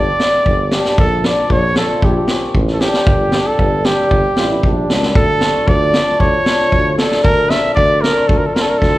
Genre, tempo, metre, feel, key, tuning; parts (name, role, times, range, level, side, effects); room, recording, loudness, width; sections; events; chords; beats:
klezmer; 115 BPM; 4/4; straight; A4 = 439 Hz
mellow cornet; melody; 0.0-9.0 s; G4 to E5; -16 LUFS; right 1 dB
cimbalom; accompaniment; 0.0-9.0 s; F3 to E4; -20 LUFS; left 2 dB
breathy tuba; bass; 0.0-9.0 s; G1 to D2; -20 LUFS; equal
street-band drum kit; drums; 0.2-8.9 s; kick drum, snare drum; -16 LUFS; equal
mellow trombone; second line; 4.4-5.1 s; D4 to F4; -24 LUFS; right 3 dB
moderate recital hall reverb, RT60 1.4 s; heard from further back in the room; -12 LUFS; side -16 dB against mid
0.0-5.2 A section; 5.2-9.0 A section
0.0 Gm; 1.0 Bb; 3.1 Gm; 5.2 Dm
0.47 | 0.99 1.51 2.03 2.55 | 3.07 3.60 4.12 4.64 | 5.16 5.68 6.21 6.73 | 7.25 7.78 8.30 8.82